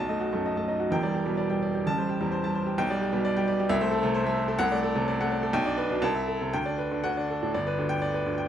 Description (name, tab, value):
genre	classical, virtuoso piano study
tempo	117-136 BPM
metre	2/4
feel	rubato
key	G major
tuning	A4 = 439 Hz
part	clear baby grand piano	solo	0.0-8.5 s	E1 to A5	-25 LUFS	equal	none
room	light reverb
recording	close, detailed microphones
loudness	-25 LUFS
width	side -9 dB against mid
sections	0.0-7.5 A section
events	none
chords	0.0 B7; 0.9 Em7; 1.9 Am7; 2.8 G/B; 3.7 Am/C; 4.6 D7/C; 5.5 G/B; 6.0 Am/C; 6.5 G/D; 7.0 D; 7.5 G